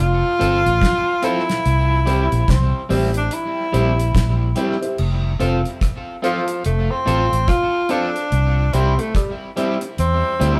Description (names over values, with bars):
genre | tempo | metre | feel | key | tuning
roots reggae | 72 BPM | 4/4 | swing 61% on 16ths | F major | A4 = 440 Hz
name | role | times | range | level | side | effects
warm tenor saxophone | melody | 0.0-10.6 s | F3 to F4 | -23 LUFS | equal | none
vintage muted fingered electric bass | bass | 0.0-10.6 s | F1 to E2 | -21 LUFS | equal | none
electric guitar at the edge of break-up | accompaniment | 0.4-10.6 s | G3 to A4 | -28 LUFS | equal | tape echo
dark grand piano | stabs | 0.4-10.6 s | E4 to C5 | -28 LUFS | equal | none
damped 70s drum kit | drums | 0.4-10.6 s | crash cymbal, hi-hat, kick drum, rim click, snare drum | -26 LUFS | equal | tape echo
room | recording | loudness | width
moderate studio reverb, RT60 0.8 s | band playing live in one room | -19 LUFS | mono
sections
0.0-5.0 A section; 5.0-10.6 B section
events
tenor saxophone solo 5.0-10.6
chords
0.0 F; 1.7 C; 5.0 F; 8.3 C